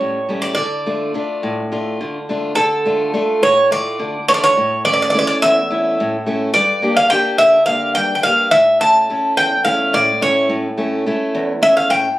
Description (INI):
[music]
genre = greek folk, Greek bouzouki band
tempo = 212 BPM (eighths)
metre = 7/8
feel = straight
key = D harmonic minor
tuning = A4 = 440 Hz
[part]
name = Greek bouzouki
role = melody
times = 0.0-12.2 s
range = A4 to A5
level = -14 LUFS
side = equal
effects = none
[part]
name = picked steel-string acoustic guitar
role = accompaniment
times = 0.0-12.2 s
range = E2 to G4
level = -20 LUFS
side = left 1 dB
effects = none
[sound]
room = moderate studio reverb, RT60 0.5 s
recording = recorded on a phone in the room, studio ambience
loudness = -13 LUFS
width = side -16 dB against mid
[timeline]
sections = 0.0-2.6 A section; 2.6-12.2 A section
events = none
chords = 0.0 A7; 0.6 Dm; 4.6 A; 6.5 Gm; 8.5 A